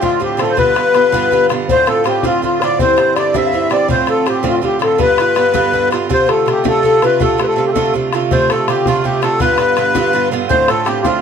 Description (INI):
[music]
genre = celtic folk, Celtic jig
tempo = 109 BPM (dotted quarters)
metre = 6/8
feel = straight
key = D dorian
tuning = A4 = 440 Hz
[part]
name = accordion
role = melody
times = 0.0-11.2 s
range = F4 to E5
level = -15 LUFS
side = left 2 dB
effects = light tremolo tuning, plate reverb
[part]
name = mellow baroque flute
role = second line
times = 0.0-7.9 s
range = F4 to F5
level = -17 LUFS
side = left 6 dB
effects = none
[part]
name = Irish bouzouki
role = accompaniment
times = 0.0-11.2 s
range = G2 to F4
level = -17 LUFS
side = right 6 dB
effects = none
[part]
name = bodhran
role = percussion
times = 0.0-11.1 s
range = none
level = -21 LUFS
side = left 6 dB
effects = none
[sound]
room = moderate small room reverb, RT60 0.5 s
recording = dark, warm production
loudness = -11 LUFS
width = side -7 dB against mid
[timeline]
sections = 0.0-8.3 A section; 8.3-11.2 A section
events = none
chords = 0.0 Dm7; 0.6 G7; 1.7 Dm7; 2.8 Cadd9; 3.9 Dm7; 5.0 G7; 6.1 Dm7; 9.4 G7; 10.5 Dm7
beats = 0.02 | 0.58 1.13 | 1.68 2.23 | 2.79 3.34 | 3.89 4.45 | 5.00 5.55 | 6.10 6.65 | 7.21 7.76 | 8.31 8.86 | 9.41 9.96 | 10.51 11.06